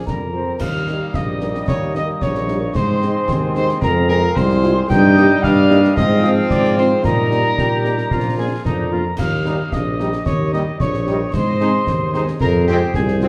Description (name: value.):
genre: military-style march for wind band.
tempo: 112 BPM.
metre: 2/4.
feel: straight.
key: Eb major.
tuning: A4 = 440 Hz.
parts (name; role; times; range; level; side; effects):
dark cornet; melody; 0.0-13.3 s; G4 to G5; -27 LUFS; equal; none.
warm woodwind section; second line; 0.0-13.3 s; Eb4 to F5; -32 LUFS; equal; none.
bright trombone section; sustained chords; 0.0-13.3 s; F3 to Eb4; -26 LUFS; equal; none.
mellow wooden piccolo; second line; 0.1-13.3 s; G5 to G6; -27 LUFS; equal; none.
mellow tuba; bass; 0.1-13.3 s; Bb1 to Bb2; -21 LUFS; equal; none.
concert snare drum, concert bass drum and clash cymbals; drums; 0.1-13.3 s; none; -26 LUFS; equal; none.
mellow French horn section; accompaniment; 0.3-13.3 s; F3 to Bb4; -28 LUFS; equal; none.
room: wet large studio reverb, RT60 1.2 s.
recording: heard from further back in the room.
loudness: -17 LUFS.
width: mono.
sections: 0.6-13.3 A section.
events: none.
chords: 0.0 Bb; 0.6 Eb; 2.8 Ab; 3.8 Fm; 4.9 Eb/G; 6.0 Fm7/Ab; 7.0 Eb/Bb; 8.1 Bb; 9.2 Eb; 11.3 Ab; 12.4 Fm.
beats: 0.07 | 0.60 1.14 | 1.68 2.22 | 2.75 3.29 | 3.83 4.36 | 4.90 5.44 | 5.97 6.51 | 7.05 7.58 | 8.12 8.66 | 9.19 9.73 | 10.27 10.80 | 11.34 11.88 | 12.41 12.95.